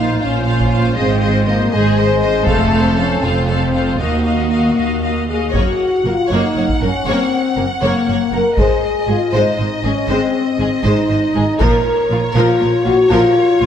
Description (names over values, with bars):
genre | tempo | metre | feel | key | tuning
cinematic, epic orchestral film score | 79 BPM (dotted quarters) | 6/8 | straight | unclear | A4 = 440 Hz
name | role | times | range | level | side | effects
rich symphonic violin section | melody | 0.0-13.7 s | Db5 to Gb5 | -24 LUFS | left 3 dB | none
warm symphonic violin section | second line | 0.0-13.7 s | F4 to Db5 | -23 LUFS | left 2 dB | none
rich symphonic viola section | accompaniment | 0.0-13.7 s | F3 to Eb5 | -23 LUFS | right 1 dB | none
mellow French horn section | sustained chords | 0.0-13.7 s | Ab3 to Bb4 | -17 LUFS | left 3 dB | none
rich symphonic cello section | bass | 0.0-13.7 s | Eb2 to Bb2 | -21 LUFS | right 2 dB | none
rich symphonic double bass section | bass | 0.0-13.7 s | F1 to Eb2 | -21 LUFS | right 3 dB | none
taiko ensemble | drums | 0.6-12.6 s | none | -20 LUFS | equal | none
room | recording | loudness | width
moderate scoring stage reverb, RT60 1.9 s | none | -13 LUFS | side -9 dB against mid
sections
0.0-5.5 A section; 5.5-13.7 B section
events
none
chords
0.0 Bbmadd9; 1.0 Ab; 2.5 F; 4.0 Ebmadd9; 5.5 Gb; 8.6 Ab; 11.6 Bbm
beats
0.21 | 0.97 1.72 | 2.47 3.23 | 4.00 4.77 | 5.55 6.31 | 7.07 7.82 | 8.57 9.33 | 10.08 10.84 | 11.60 12.36 | 13.11